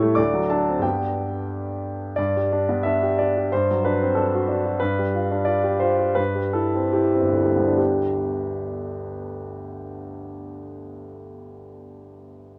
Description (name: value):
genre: classical, romantic character piece for solo piano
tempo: 69-94 BPM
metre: 2/4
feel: rubato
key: G major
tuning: A4 = 440 Hz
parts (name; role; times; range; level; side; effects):
- clear baby grand piano; solo; 0.0-12.6 s; G1 to D6; -24 LUFS; equal; none
room: moderate recital hall reverb, RT60 1.8 s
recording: none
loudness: -22 LUFS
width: mono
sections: 0.0-2.2 A section; 2.2-7.8 B section; 7.8-10.8 C section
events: slowing down 4.2-7.8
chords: 0.2 D7; 0.8 G; 3.5 D7/G; 4.8 G7; 6.2 C/G; 7.8 G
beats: 0.17 | 0.83 1.50 | 2.17 2.85 | 3.51 4.15 | 4.79 5.47 | 6.18 6.95 | 7.78 8.54 | 9.30 10.07